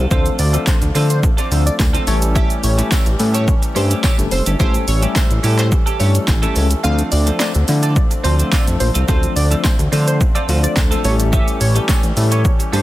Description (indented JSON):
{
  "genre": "dance-pop",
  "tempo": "107 BPM",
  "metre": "4/4",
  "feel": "straight",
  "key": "D minor",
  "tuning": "A4 = 440 Hz",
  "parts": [
    { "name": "pedal harmonium", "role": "sustained chords", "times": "0.0-12.8 s", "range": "D3 to A4", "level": "-27 LUFS", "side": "left 2 dB", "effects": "sidechain pumping" },
    { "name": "twelve-string electric guitar", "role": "riff", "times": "0.0-12.8 s", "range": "A3 to A4", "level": "-27 LUFS", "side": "right 5 dB", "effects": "analog chorus" },
    { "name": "fat analog bass", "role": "bass", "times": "0.0-12.8 s", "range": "F1 to D3", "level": "-16 LUFS", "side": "equal", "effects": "sidechain pumping" },
    { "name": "plucky unison lead", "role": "melody", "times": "0.1-12.8 s", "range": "C5 to F5", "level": "-25 LUFS", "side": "equal", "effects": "sidechain pumping, tape echo" },
    { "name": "bell-like tine electric piano", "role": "accompaniment", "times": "0.1-12.8 s", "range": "F3 to C5", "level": "-25 LUFS", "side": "left 4 dB", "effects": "medium stereo tremolo, sidechain pumping" },
    { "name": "punchy analog drum machine", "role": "drums", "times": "0.1-12.8 s", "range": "handclaps, hi-hat, kick drum, shaker, snare drum", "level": "-17 LUFS", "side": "equal", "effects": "none" },
    { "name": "tambourine", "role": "percussion", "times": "0.7-12.0 s", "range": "none", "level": "-32 LUFS", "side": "left 7 dB", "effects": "none" }
  ],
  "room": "little or no reverb",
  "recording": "dense, heavily limited modern master",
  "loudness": "-13 LUFS",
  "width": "side -16 dB against mid",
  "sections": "0.0-12.8 A section",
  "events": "kick muted 6.8-8.0",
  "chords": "0.0 Dm7; 2.1 A7; 6.8 Dm7; 11.0 A7",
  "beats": "| 0.11 0.67 1.23 1.79 | 2.36 2.92 3.48 4.04 | 4.60 5.16 5.72 6.28 | 6.84 7.40 7.96 8.52 | 9.09 9.64 10.21 10.77 | 11.33 11.89 12.45"
}